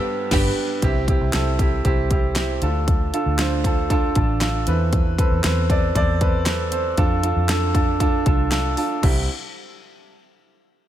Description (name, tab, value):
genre	piano-driven pop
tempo	117 BPM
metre	4/4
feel	straight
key	C major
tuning	A4 = 440 Hz
part	mellow French horn	melody	0.0-0.6 s	B3	-34 LUFS	left 2 dB	none
part	warm studio violin section	second line	0.3-0.5 s	G4 to G5	-33 LUFS	equal	none
part	clear upright piano	accompaniment	0.3-9.3 s	C2 to D5	-22 LUFS	right 2 dB	none
part	vintage muted fingered electric bass	bass	0.3-9.3 s	G1 to F2	-22 LUFS	equal	none
part	pop drum kit	drums	0.3-9.2 s	crash cymbal, handclaps, hi-hat, kick drum, snare drum	-22 LUFS	equal	none
room	light reverb, small room ambience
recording	none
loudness	-18 LUFS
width	side -11 dB against mid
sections	0.8-9.0 A section; 9.0-10.9 B section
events	band accent 0.0-0.8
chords	0.0 G; 0.8 C; 2.6 Dm; 4.7 Amadd9/E; 7.0 F6; 9.0 C